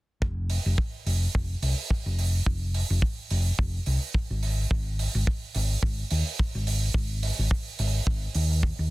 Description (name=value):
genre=nu-disco, nu disco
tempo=107 BPM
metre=4/4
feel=swing 56% on 16ths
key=unclear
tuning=A4 = 441 Hz
part: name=hollow-body short-scale fingered electric bass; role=bass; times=0.2-8.9 s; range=F1 to Eb2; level=-26 LUFS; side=equal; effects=none
part: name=kick drum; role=drums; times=0.2-8.8 s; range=none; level=-26 LUFS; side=equal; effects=none
part: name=hi-hat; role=drums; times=0.5-8.5 s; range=none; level=-34 LUFS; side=right 5 dB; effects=none
room=little or no reverb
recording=dense, heavily limited modern master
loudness=-24 LUFS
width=side -20 dB against mid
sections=0.2-8.9 A section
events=none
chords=none